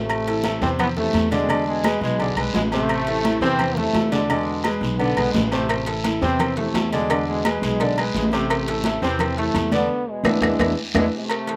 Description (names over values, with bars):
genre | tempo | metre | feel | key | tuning
latin, salsa | 171 BPM | 4/4 | straight | A harmonic minor | A4 = 440 Hz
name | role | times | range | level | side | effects
clear trombone section | melody | 0.0-11.6 s | B2 to C4 | -27 LUFS | equal | slapback echo
upright bass | bass | 0.0-11.1 s | A1 to E2 | -29 LUFS | equal | none
agogo bells and timbales | percussion | 0.1-11.6 s | none | -32 LUFS | equal | slapback echo
claves | percussion | 0.1-11.5 s | none | -31 LUFS | equal | slapback echo
congas | percussion | 0.1-11.6 s | none | -29 LUFS | equal | none
guiro | percussion | 0.1-11.0 s | none | -36 LUFS | equal | none
clear concert grand piano | accompaniment | 0.3-11.6 s | C3 to D5 | -27 LUFS | equal | slapback echo
cowbell | percussion | 5.7-11.6 s | none | -33 LUFS | equal | slapback echo
room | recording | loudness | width
little or no reverb | recorded outdoors, with no room sound | -21 LUFS | mono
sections
0.1-11.3 A section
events
band accent 9.9-11.3; drum fill 10.3-11.3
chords
0.1 Am; 1.5 E7; 2.9 Am; 4.3 E7; 5.7 Am; 7.1 E7; 8.5 Am; 9.9 E7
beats
| 0.10 0.45 0.80 1.15 | 1.50 1.85 2.20 2.55 | 2.90 3.25 3.60 3.95 | 4.30 4.65 5.00 5.35 | 5.70 6.05 6.40 6.75 | 7.10 7.45 7.80 8.15 | 8.50 8.85 9.20 9.55 | 9.90 10.25 10.60 10.95 | 11.30